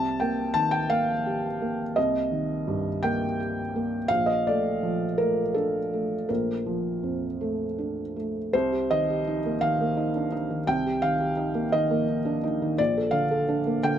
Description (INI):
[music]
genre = neoclassical minimalist piano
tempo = 56 BPM (dotted quarters)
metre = 6/8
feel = rubato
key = C dorian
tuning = A4 = 440 Hz
[part]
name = felt-muted upright piano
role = solo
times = 0.0-14.0 s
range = Bb1 to A5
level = -24 LUFS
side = equal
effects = none
[sound]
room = light reverb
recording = dark, warm production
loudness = -24 LUFS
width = side -9 dB against mid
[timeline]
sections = 0.0-8.5 A section; 8.5-14.0 B section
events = none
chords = 0.0 Cm7; 4.1 Bbmaj7; 8.5 Cm7; 12.8 Bbmaj7